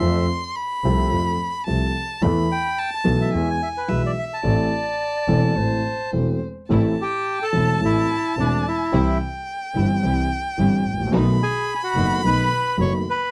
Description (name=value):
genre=tango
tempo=108 BPM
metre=4/4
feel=rubato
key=A minor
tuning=A4 = 440 Hz
part: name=bandoneon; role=melody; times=0.0-13.3 s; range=D4 to C#6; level=-26 LUFS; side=equal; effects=none
part: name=warm violin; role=second line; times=0.0-13.3 s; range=C5 to C6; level=-30 LUFS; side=equal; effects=none
part: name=warm concert grand piano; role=accompaniment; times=0.0-13.0 s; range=E1 to A4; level=-25 LUFS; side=equal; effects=none
part: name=clear double bass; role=bass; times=0.0-13.0 s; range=E1 to F2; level=-26 LUFS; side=equal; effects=none
part: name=clear symphonic string section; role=stabs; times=6.7-13.0 s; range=G3 to E4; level=-33 LUFS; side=equal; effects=none
room=little or no reverb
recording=dry, close 1970s-style studio recording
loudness=-21 LUFS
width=mono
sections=0.0-6.7 A section; 6.7-13.3 A section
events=none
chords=0.0 F; 2.2 Esus4; 3.3 E; 4.4 Am; 8.9 C; 11.1 B7